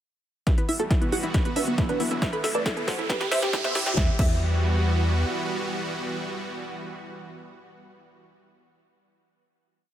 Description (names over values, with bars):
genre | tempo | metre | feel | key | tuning
uplifting trance | 137 BPM | 4/4 | straight | E minor | A4 = 440 Hz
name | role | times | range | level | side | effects
wide unison pluck | melody | 0.5-8.8 s | B3 to E5 | -29 LUFS | right 1 dB | sidechain pumping, digital delay
supersaw pad | sustained chords | 0.5-8.2 s | C3 to G4 | -31 LUFS | right 1 dB | sidechain pumping
analog pluck | arpeggios | 0.5-4.3 s | B3 to E5 | -34 LUFS | right 2 dB | chorus, sidechain pumping, digital delay
electronic kick drum | drums | 0.5-4.3 s | none | -24 LUFS | equal | none
techno drum kit | drums | 0.5-4.3 s | crash cymbal, hi-hat, snare drum | -32 LUFS | equal | high-pass filter on snare, sidechain pumping on hats, high-pass filter on hats, sidechain pumping on cymbals, high-pass filter on cymbals
riser | sound effects | 1.6-4.0 s | none | -34 LUFS | right 2 dB | none
tight sequencer bass | bass | 0.6-5.2 s | E1 to A2 | -26 LUFS | equal | sidechain pumping, high-pass filter
room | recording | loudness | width
light reverb | high-pass filter | -23 LUFS | side -11 dB against mid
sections
0.5-4.0 build; 4.0-7.5 final chord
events
build-up 0.5-4.0; drum fill 0.5-4.0; filter sweep on synth pluck 0.5-4.0; filter sweep 0.5-4.0; riser 1.6-4.0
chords
0.5 Emadd9; 1.3 Bm; 2.2 Am; 3.1 Csus2; 4.0 Emadd9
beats
| 0.47 0.91 1.34 1.78 | 2.22 2.66 3.10 3.53 | 3.97 4.41 4.85 5.29 | 5.72 6.16 6.60 7.04